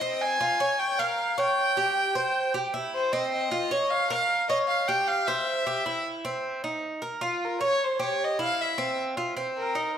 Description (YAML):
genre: latin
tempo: 154 BPM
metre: 4/4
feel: straight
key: unclear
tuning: A4 = 440 Hz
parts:
  - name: warm violin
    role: melody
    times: 0.0-9.9 s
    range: F4 to Ab5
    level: -26 LUFS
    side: equal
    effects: tape echo
  - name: Cuban tres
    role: arpeggios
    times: 0.0-10.0 s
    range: C4 to Db5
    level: -28 LUFS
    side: right 1 dB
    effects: none
room: moderate large studio reverb, RT60 1.2 s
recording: none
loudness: -24 LUFS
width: side -9 dB against mid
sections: 0.0-6.2 A section; 6.2-10.0 B section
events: violin solo 6.2-10.0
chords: 0.0 Fm; 0.8 Bbm; 1.6 Gsus4; 2.4 C; 3.1 F5; 3.9 Bbm; 4.7 Cadd11/G; 5.5 C; 6.2 Cm; 7.0 Bbm; 7.8 Em6; 8.6 C; 9.4 Cm7